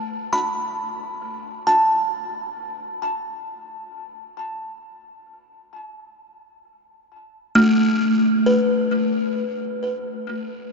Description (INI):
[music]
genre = ambient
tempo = free time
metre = none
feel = none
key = unclear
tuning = A4 = 440 Hz
[part]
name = buzzing kalimba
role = solo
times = 0.0-10.7 s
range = A3 to B5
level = -20 LUFS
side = equal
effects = tape echo
[sound]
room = wet cathedral reverb, RT60 6.8 s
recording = in a vast, echoing space, nothing above 7.5 kHz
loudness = -19 LUFS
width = side -4 dB against mid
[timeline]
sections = 0.0-10.7 A section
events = none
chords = 0.0 Asus2